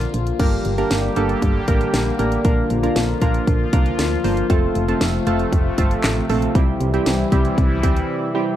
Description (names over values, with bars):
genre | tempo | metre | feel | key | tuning
synth-pop | 117 BPM | 4/4 | straight | unclear | A4 = 439 Hz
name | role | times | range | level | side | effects
warm analog keys | accompaniment | 0.0-8.6 s | G3 to C5 | -22 LUFS | right 3 dB | chorus
sweeping resonant pad | sustained chords | 0.0-8.6 s | C3 to G4 | -24 LUFS | left 4 dB | chorus
solid FM bass | bass | 0.0-8.0 s | F1 to D2 | -22 LUFS | equal | none
house drum kit | drums | 0.0-8.1 s | crash cymbal, handclaps, hi-hat, kick drum, snare drum | -20 LUFS | equal | none
room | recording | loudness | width
light reverb | dark, warm production | -16 LUFS | side -12 dB against mid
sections
0.4-8.6 A section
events
break 8.1-8.6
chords
0.4 Gm; 2.4 Bb; 4.5 F; 6.6 C